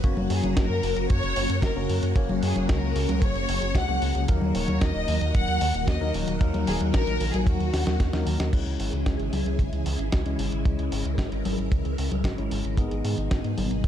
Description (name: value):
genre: italo disco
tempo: 113 BPM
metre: 4/4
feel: straight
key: C# dorian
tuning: A4 = 439 Hz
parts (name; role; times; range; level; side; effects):
- phased string machine; sustained chords; 0.0-13.9 s; B2 to A#4; -31 LUFS; right 1 dB; ensemble chorus, phaser
- overdriven tine electric piano; stabs; 0.0-13.9 s; F#3 to D#5; -33 LUFS; left 4 dB; low-pass filter
- round analog bass; bass; 0.0-13.9 s; D#1 to G#2; -28 LUFS; equal; none
- dusty soul sampler-style drum kit; drums; 0.0-13.9 s; congas, crash cymbal, hi-hat, snare drum; -31 LUFS; left 1 dB; none
- kick drum; drums; 0.0-13.9 s; none; -24 LUFS; equal; none
- warm studio violin section; melody; 0.3-8.2 s; F#4 to F#5; -30 LUFS; left 2 dB; ping-pong delay
room: small room ambience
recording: dark, warm production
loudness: -22 LUFS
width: side -10 dB against mid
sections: 0.0-8.5 A section; 8.5-13.9 B section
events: drum fill 7.7-8.5; filter sweep on tine electric piano 8.5-13.9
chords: 0.0 F#; 4.3 D#m; 8.5 C#m; 12.8 G#m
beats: | 0.04 0.57 1.10 1.63 | 2.16 2.69 3.22 3.75 | 4.29 4.82 5.35 5.88 | 6.41 6.94 7.47 8.00 | 8.53 9.06 9.59 10.12 | 10.66 11.19 11.72 12.25 | 12.78 13.31 13.84